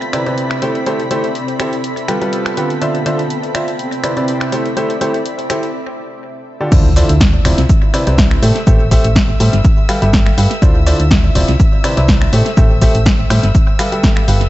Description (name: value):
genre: piano house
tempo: 123 BPM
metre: 4/4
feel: swing 54% on 16ths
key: D dorian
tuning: A4 = 440 Hz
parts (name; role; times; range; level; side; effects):
- dark studio violin section; sustained chords; 0.0-14.5 s; E5 to B6; -28 LUFS; equal; sidechain pumping
- house drum kit; drums; 0.0-14.5 s; crash cymbal, finger snaps, hi-hat, snare drum; -20 LUFS; equal; low-pass filter on hats, low-pass filter on snare, low-pass filter on cymbals, tape echo
- granular cloud pad; texture; 0.0-5.7 s; C4 to G5; -22 LUFS; right 1 dB; built-in reverb, sidechain pumping
- clear grand piano; riff; 0.1-14.4 s; C3 to F5; -18 LUFS; equal; sidechain pumping, tape echo
- solid FM bass; bass; 6.7-14.5 s; D1 to A2; -13 LUFS; equal; sidechain pumping
- dusty soul sampler-style drum kit; drums; 6.7-14.4 s; hi-hat, shaker, snare drum; -33 LUFS; right 3 dB; none
- electronic kick drum; drums; 6.7-14.1 s; none; -12 LUFS; equal; none
- impact; sound effects; 6.7-8.7 s; none; -20 LUFS; equal; none
room: light reverb, digital ambience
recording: echo-heavy mix, nothing above 7.9 kHz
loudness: -11 LUFS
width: side -16 dB against mid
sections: 0.0-6.7 A section; 6.7-14.5 B section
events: break 5.7-6.7; drop 6.7-14.5; impact 6.7-8.7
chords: 0.0 Cmaj9; 0.6 Am7; 1.8 G9; 2.8 Dm9; 3.8 Cmaj9; 4.5 Am7; 5.7 Gsus2; 6.7 Dm9; 7.7 Cmaj9; 8.4 Am7; 9.6 G9; 10.6 Dm9; 11.6 Cmaj9; 12.3 Am7; 13.5 G9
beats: 0.38 | 0.86 1.35 1.84 2.33 | 2.82 3.30 3.79 4.28 | 4.77 5.25 5.74 6.23 | 6.72 7.21 7.69 8.18 | 8.67 9.16 9.64 10.13 | 10.62 11.11 11.60 12.08 | 12.57 13.06 13.55 14.04